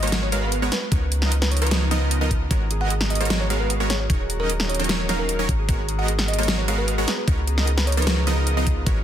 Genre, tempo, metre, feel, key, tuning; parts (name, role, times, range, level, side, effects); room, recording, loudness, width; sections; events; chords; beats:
future bass; 151 BPM; 4/4; half-time; G# dorian; A4 = 440 Hz
bell-like FM electric piano; melody; 0.0-8.5 s; A#4 to F#5; -31 LUFS; equal; chorus, sidechain pumping, tape echo
airy breathy pad; sustained chords; 0.0-9.0 s; C#3 to A#5; -35 LUFS; left 1 dB; chorus, sidechain pumping
supersaw stab; riff; 0.0-9.0 s; E#3 to E#5; -26 LUFS; right 2 dB; sidechain pumping
warm 808-style bass; bass; 0.0-9.0 s; D#1 to C#2; -23 LUFS; equal; sidechain pumping
dubstep drum kit; drums; 0.0-8.9 s; hi-hat, snare drum; -26 LUFS; equal
electronic kick drum; drums; 0.9-8.9 s; -22 LUFS; equal
concert harp; arpeggios; 2.5-9.0 s; E#4 to D#5; -34 LUFS; right 4 dB; sidechain pumping, ping-pong delay
digital ambience; dense, heavily limited modern master; -19 LUFS; side -10 dB against mid
0.0-9.0 A section
0.0 G#m11; 0.9 C#13; 2.5 G#m11; 4.1 D#m7; 5.5 G#m11; 7.3 C#13
0.12 0.52 | 0.92 1.32 1.71 2.11 | 2.51 2.91 3.30 3.70 | 4.10 4.50 4.89 5.29 | 5.69 6.08 6.48 6.88 | 7.28 7.67 8.07 8.47 | 8.87